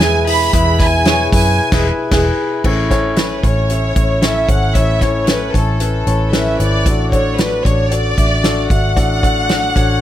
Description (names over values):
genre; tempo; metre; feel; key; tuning
piano-driven pop; 114 BPM; 4/4; straight; A major; A4 = 438 Hz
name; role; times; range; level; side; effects
warm studio violin section; melody; 0.0-10.0 s; A4 to B5; -18 LUFS; right 1 dB; none
dark French horn section; second line; 0.0-2.3 s; G#3 to G#4; -24 LUFS; right 2 dB; none
warm concert grand piano; accompaniment; 0.0-10.0 s; A2 to E5; -19 LUFS; left 2 dB; none
vintage muted fingered electric bass; bass; 0.0-10.0 s; E1 to F#2; -18 LUFS; equal; none
natural country drum kit; drums; 0.0-9.9 s; crash cymbal, hi-hat, kick drum, snare drum; -17 LUFS; equal; none
room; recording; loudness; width
light reverb, small room ambience; none; -12 LUFS; side -12 dB against mid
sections
0.0-2.6 A section; 2.6-10.0 B section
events
band accent 1.6-2.6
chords
0.0 E; 2.6 A; 6.9 D